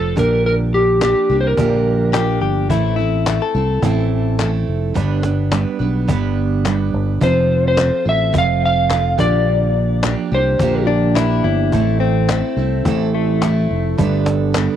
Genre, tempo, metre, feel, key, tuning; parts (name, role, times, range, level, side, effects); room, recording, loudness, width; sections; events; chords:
acoustic pop; 106 BPM; 4/4; swing 55% on 16ths; A4 = 440 Hz
electric slide guitar; melody; 0.0-2.4, 7.2-10.9 s; G4 to F5; -17 LUFS; left 1 dB; cassette tape, analog delay
picked steel-string acoustic guitar; accompaniment; 0.0-14.8 s; G2 to B4; -21 LUFS; right 8 dB
fingered electric bass; bass; 0.0-14.7 s; F1 to C2; -18 LUFS; left 1 dB
cajon; drums; 0.2-14.7 s; -22 LUFS; left 1 dB; cassette tape
group handclap; percussion; 1.0-14.7 s; -28 LUFS; left 13 dB
direct-recorded clean electric guitar; second line; 2.1-4.5, 10.9-14.2 s; A3 to A4; -21 LUFS; left 11 dB
light reverb; home recording on cassette; -14 LUFS; side -10 dB against mid
0.0-14.8 A section
0.2 Bb6; 2.7 Am; 5.0 G; 7.2 F; 9.2 Bb6; 11.7 Am; 14.0 Gadd9